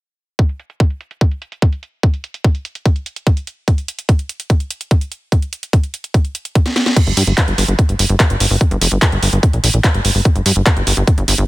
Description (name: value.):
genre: psychedelic trance.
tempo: 146 BPM.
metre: 4/4.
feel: straight.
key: G minor.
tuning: A4 = 441 Hz.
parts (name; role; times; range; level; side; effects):
drum and bass drum kit; drums; 0.4-11.5 s; crash cymbal, handclaps, hi-hat, snare drum; -18 LUFS; right 1 dB; overdrive, low-pass filter on hats, low-pass filter on snare, low-pass filter on cymbals.
electronic kick drum; drums; 0.4-11.2 s; none; -13 LUFS; equal; overdrive.
plucky analog bass; bass; 7.1-11.4 s; F1 to G2; -15 LUFS; equal; tube saturation.
room: little or no reverb.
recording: dense, heavily limited modern master.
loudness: -14 LUFS.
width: side -18 dB against mid.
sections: 0.4-7.0 A section; 7.0-11.5 B section.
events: filter sweep on drum 0.4-7.0; drum fill 6.7-7.0.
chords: none.